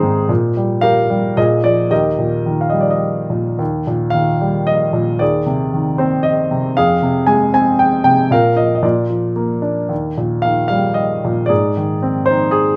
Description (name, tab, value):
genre	classical, lyrical solo piano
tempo	102-119 BPM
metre	3/4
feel	rubato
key	Eb major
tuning	A4 = 440 Hz
part	clear grand piano	solo	0.0-12.8 s	Eb2 to Ab5	-16 LUFS	equal	none
room	light reverb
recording	close, detailed microphones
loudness	-16 LUFS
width	mono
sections	0.0-3.6 A section; 3.6-12.8 A section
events	none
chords	0.3 Gm7/Bb; 1.4 Bb7; 1.9 Eb; 5.2 Ab/Eb; 6.8 Fm; 8.3 Bb5; 8.8 Bb; 9.9 Eb; 11.5 Ab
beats	| 0.30 0.83 1.37 | 1.91 2.46 3.03 | 3.60 4.15 4.68 | 5.21 5.73 6.25 | 6.77 7.29 7.79 | 8.31 8.84 9.36 | 9.91 10.45 10.98 | 11.51 12.03 12.55